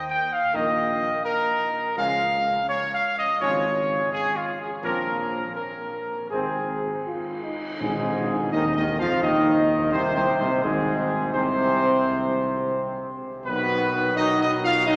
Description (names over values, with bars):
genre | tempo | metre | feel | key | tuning
classical, ceremonial fanfare | 85 BPM | 4/4 | straight | Ab major | A4 = 440 Hz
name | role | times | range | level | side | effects
dark trumpet section | melody | 0.1-15.0 s | F4 to G5 | -27 LUFS | equal | none
clear trombone section | sustained chords | 0.5-15.0 s | Ab2 to C4 | -32 LUFS | equal | none
mellow French horn section | sustained chords | 0.5-15.0 s | Ab3 to Bb4 | -32 LUFS | equal | none
mellow tuba | bass | 0.5-15.0 s | Ab1 to F2 | -33 LUFS | equal | none
cymbal swell and tam-tam | percussion | 4.8-10.6 s | none | -39 LUFS | equal | none
room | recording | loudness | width
wet cathedral reverb, RT60 4.9 s | none | -24 LUFS | mono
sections
0.0-7.8 A section; 7.8-15.0 B section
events
band accent 7.8-8.5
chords
0.0 Eb5; 2.0 Db; 4.8 Bbsus2; 6.3 Ab; 13.5 B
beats
0.54 1.25 | 1.98 2.69 3.41 4.12 | 4.83 5.56 6.30 7.05 | 7.81 8.52 9.23 9.93 | 10.63 11.34 12.05 12.76 | 13.46 14.16 14.86